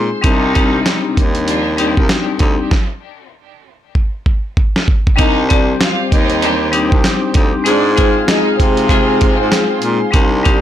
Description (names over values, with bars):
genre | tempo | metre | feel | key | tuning
hip hop, boom-bap hip-hop | 97 BPM | 4/4 | swing 62% on 16ths | C minor | A4 = 442 Hz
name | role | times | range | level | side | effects
warm studio violin section | melody | 0.0-0.2, 5.2-10.1 s | C4 to C6 | -21 LUFS | right 1 dB | high-pass filter, low-pass filter, ping-pong delay
vibraphone with hard mallets | accompaniment | 0.0-10.6 s | G3 to Ab4 | -17 LUFS | left 4 dB | high-pass filter, low-pass filter
breathy baritone saxophone | bass | 0.0-10.6 s | C2 to C3 | -18 LUFS | right 1 dB | transformer saturation
clear studio string section | stabs | 0.2-2.0, 6.4-9.2 s | C3 to G4 | -23 LUFS | equal | high-pass filter, low-pass filter, ping-pong delay
dusty soul sampler-style drum kit | drums | 0.2-10.6 s | hi-hat, kick drum, snare drum | -14 LUFS | right 1 dB | none
lush unison pad | sustained chords | 5.2-10.6 s | G4 to D6 | -25 LUFS | right 2 dB | chorus, high-pass filter, low-pass filter
room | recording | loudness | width
light reverb | blown-out, overdriven recording, overdrive | -12 LUFS | side -11 dB against mid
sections
0.0-5.2 A section; 5.2-10.6 B section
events
stop 2.7-5.2; drum fill 4.0-5.2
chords
0.2 Cmadd9; 2.7 N.C.; 5.2 Cmadd9; 7.7 Ab6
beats
| 0.24 0.86 1.48 2.10 | 2.71 3.33 3.95 4.57 | 5.19 5.81 6.42 7.04 | 7.66 8.28 8.90 9.52 | 10.14